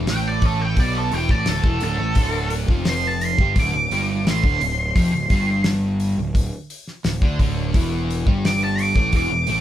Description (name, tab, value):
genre	psychedelic rock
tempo	86 BPM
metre	4/4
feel	straight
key	D dorian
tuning	A4 = 440 Hz
part	overdriven semi-hollow guitar	riff	0.0-9.6 s	D2 to D4	-24 LUFS	equal	none
part	fuzz picked electric bass	bass	0.0-9.6 s	D1 to D2	-24 LUFS	equal	overdrive
part	octave-fuzz lead guitar	melody	0.1-9.6 s	A4 to D6	-23 LUFS	right 2 dB	wah, distortion
part	damped 70s drum kit	drums	0.1-9.6 s	hi-hat, kick drum, snare drum	-21 LUFS	equal	none
room	moderate studio reverb, RT60 0.5 s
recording	band playing live in one room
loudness	-18 LUFS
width	side -12 dB against mid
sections	0.0-9.6 A section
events	lead electric guitar solo 0.0-9.6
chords	0.0 Em7; 2.2 Dm7; 7.8 Em7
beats	0.09 0.78 1.48 | 2.18 2.87 3.57 4.27 | 4.96 5.66 6.36 7.05 | 7.75 8.45 9.14